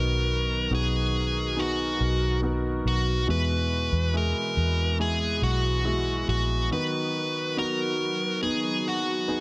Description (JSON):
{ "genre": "pop ballad", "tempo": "70 BPM", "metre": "4/4", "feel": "straight", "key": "B major", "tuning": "A4 = 441 Hz", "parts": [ { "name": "dark smooth lead guitar", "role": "melody", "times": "0.0-9.4 s", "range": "F#4 to B4", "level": "-30 LUFS", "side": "equal", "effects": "overdrive" }, { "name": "warm concert grand piano", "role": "accompaniment", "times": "0.0-9.4 s", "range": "B2 to G#4", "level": "-33 LUFS", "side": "equal", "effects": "none" }, { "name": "warm symphonic string section", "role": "sustained chords", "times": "0.0-9.4 s", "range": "D#3 to A#4", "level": "-37 LUFS", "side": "equal", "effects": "none" }, { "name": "vintage muted fingered electric bass", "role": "bass", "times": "0.0-6.7 s", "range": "A#1 to E2", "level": "-29 LUFS", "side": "equal", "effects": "none" } ], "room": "light reverb, studio ambience", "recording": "none", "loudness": "-26 LUFS", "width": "mono", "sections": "0.0-9.4 A section", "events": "none", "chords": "0.0 B; 3.3 Eadd9; 6.7 B/D#" }